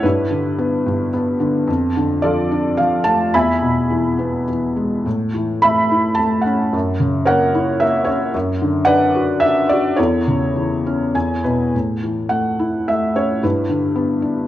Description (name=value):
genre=classical, lyrical solo piano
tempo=100-116 BPM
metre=3/4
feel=rubato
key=A major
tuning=A4 = 441 Hz
part: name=felt-muted upright piano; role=solo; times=0.0-14.5 s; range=E2 to B5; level=-15 LUFS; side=equal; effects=none
room=moderate recital hall reverb, RT60 1.3 s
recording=worn, warbling old tape, cassette tape, warbly pitch drift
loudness=-15 LUFS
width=side -13 dB against mid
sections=0.0-11.7 A section; 11.7-14.5 A section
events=felt piano fill 10.8-11.7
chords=0.0 G6; 1.7 Dm/F; 3.3 E; 5.1 Aadd9; 6.7 F#7; 8.3 Bm/F#; 10.0 A/E; 11.1 E; 11.7 A; 13.4 G6